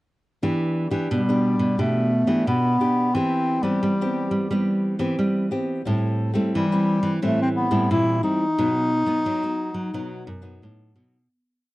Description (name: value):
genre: samba and choro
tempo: 88 BPM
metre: 4/4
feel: straight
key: E minor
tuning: A4 = 440 Hz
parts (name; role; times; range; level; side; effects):
- nylon-string guitar; accompaniment; 0.4-11.2 s; A2 to G4; -26 LUFS; equal; none
- nylon-string guitar; bass; 0.4-11.3 s; F#2 to B3; -24 LUFS; right 1 dB; none
- warm bass clarinet; melody; 1.1-10.6 s; G3 to E4; -23 LUFS; left 1 dB; none
room: light reverb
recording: dry, close 1970s-style studio recording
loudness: -20 LUFS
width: side -18 dB against mid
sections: 0.4-11.3 A section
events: fade-out 8.6-11.3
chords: 0.4 Em7; 3.1 Cmaj7/E; 5.9 Am7; 8.6 B